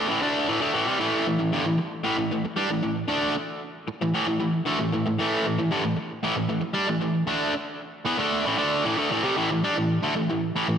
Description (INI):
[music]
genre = rock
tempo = 114 BPM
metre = 4/4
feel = straight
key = unclear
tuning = A4 = 440 Hz
[part]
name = distorted electric guitar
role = solo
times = 0.0-10.8 s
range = G2 to D4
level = -22 LUFS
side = equal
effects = overdrive, tape echo
[sound]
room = wet lush hall reverb, RT60 2.3 s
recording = big arena sound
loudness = -22 LUFS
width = side -8 dB against mid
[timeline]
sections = 0.0-9.4 A section; 9.4-10.8 B section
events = none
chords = 0.0 A5